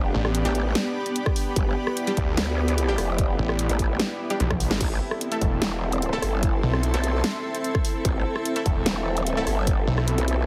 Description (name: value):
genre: heavy wobble dubstep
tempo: 148 BPM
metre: 4/4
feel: half-time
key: A minor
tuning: A4 = 441 Hz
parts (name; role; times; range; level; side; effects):
- supersaw pad; sustained chords; 0.0-10.5 s; B3 to A4; -34 LUFS; equal; sidechain pumping
- growl bass; bass; 0.0-10.5 s; E1 to D2; -27 LUFS; equal; chorus, overdrive
- granular cloud pad; texture; 0.0-10.5 s; B3 to C6; -34 LUFS; equal; built-in reverb, sidechain pumping
- snarling distorted saw bass; bass; 0.1-10.2 s; E1 to D2; -27 LUFS; equal; distortion, overdrive
- dubstep drum kit; drums; 0.2-10.4 s; crash cymbal, hi-hat, rim click, snare drum, toms; -30 LUFS; equal; none
- orchestra-hit-like synth stab; stabs; 0.5-9.4 s; G3 to A4; -35 LUFS; equal; none
- electronic kick drum; drums; 1.3-9.8 s; none; -27 LUFS; equal; none
room: light reverb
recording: heavily compressed radio sound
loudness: -24 LUFS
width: mono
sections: 0.0-10.5 A section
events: drum fill 4.4-4.8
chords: 0.0 G; 4.8 Am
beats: 0.35 0.75 1.16 | 1.56 1.97 2.37 2.78 | 3.19 3.59 4.00 4.40 | 4.81 5.21 5.62 6.02 | 6.43 6.83 7.24 7.64 | 8.05 8.46 8.86 9.27 | 9.67 10.08